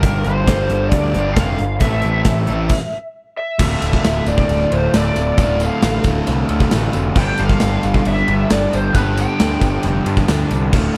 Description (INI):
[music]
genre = classic rock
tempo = 134 BPM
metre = 4/4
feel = straight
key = D dorian from 3.6 s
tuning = A4 = 440 Hz
[part]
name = lead guitar through a small cranked amp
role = melody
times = 0.0-10.0 s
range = Bb4 to G5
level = -24 LUFS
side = equal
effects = wah, overdrive
[part]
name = raw garage guitar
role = riff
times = 0.0-11.0 s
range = D2 to A4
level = -27 LUFS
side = equal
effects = overdrive
[part]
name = sludgy distorted guitar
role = riff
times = 0.0-11.0 s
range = D2 to A3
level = -24 LUFS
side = equal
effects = overdrive
[part]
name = fuzz picked electric bass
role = bass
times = 0.0-10.9 s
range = D1 to G2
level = -22 LUFS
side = equal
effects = overdrive
[part]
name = gated 80s drum kit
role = drums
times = 0.0-10.8 s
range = crash cymbal, hi-hat, kick drum, ride cymbal, snare drum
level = -21 LUFS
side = equal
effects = none
[part]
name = tambourine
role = percussion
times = 3.6-10.8 s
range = none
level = -40 LUFS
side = equal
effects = none
[sound]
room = small room ambience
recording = none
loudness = -17 LUFS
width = mono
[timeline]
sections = 0.0-3.6 A section; 3.6-11.0 B section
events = stop 2.7-3.6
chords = 0.0 Gm7; 1.8 Am; 3.6 Dm; 7.2 G